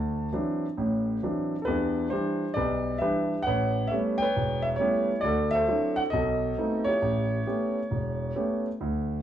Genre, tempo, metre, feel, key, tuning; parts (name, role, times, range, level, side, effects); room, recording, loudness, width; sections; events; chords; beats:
solo jazz; 135 BPM; 4/4; swing 68% on 8ths; A4 = 445 Hz
warm concert grand piano; solo; 0.0-9.2 s; E1 to A5; -25 LUFS; equal
wet studio reverb, RT60 0.5 s; heard from further back in the room; -25 LUFS; side -10 dB against mid
0.0-8.8 A section
0.0 D9; 1.7 Em7; 3.5 A9; 5.2 D9; 6.1 B7b9; 7.0 A9
0.33 0.78 1.22 | 1.67 2.11 2.56 3.01 | 3.45 3.90 4.34 4.79 | 5.23 5.68 6.13 6.57 | 7.02 7.46 7.91 8.35 | 8.80